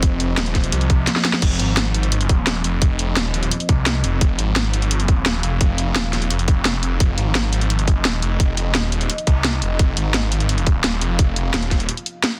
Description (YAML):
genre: dark technical drum and bass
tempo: 172 BPM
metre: 4/4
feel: straight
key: F minor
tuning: A4 = 439 Hz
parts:
  - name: deep dark ambient pad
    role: sustained chords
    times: 0.0-12.4 s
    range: F3 to F5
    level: -32 LUFS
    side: equal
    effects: chorus, built-in reverb, sidechain pumping
  - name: snarling distorted saw bass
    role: bass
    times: 0.0-11.9 s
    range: Eb1 to C2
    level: -23 LUFS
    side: equal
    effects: distortion, overdrive, sidechain pumping
  - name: drum and bass drum kit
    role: drums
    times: 0.0-12.3 s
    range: crash cymbal, hi-hat, snare drum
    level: -24 LUFS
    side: equal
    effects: none
  - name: electronic kick drum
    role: drums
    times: 0.0-11.8 s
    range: none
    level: -19 LUFS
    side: equal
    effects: none
room: digital ambience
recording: dense, heavily limited modern master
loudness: -19 LUFS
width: mono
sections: 0.0-12.4 A section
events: drum fill 1.1-1.4; break 11.9-12.4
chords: 0.0 F5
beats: | 0.03 0.38 0.72 1.07 | 1.42 1.77 2.12 2.47 | 2.82 3.17 3.52 3.86 | 4.21 4.56 4.91 5.26 | 5.61 5.96 6.31 6.66 | 7.00 7.35 7.70 8.05 | 8.40 8.75 9.10 9.45 | 9.79 10.14 10.49 10.84 | 11.19 11.54 11.89 12.24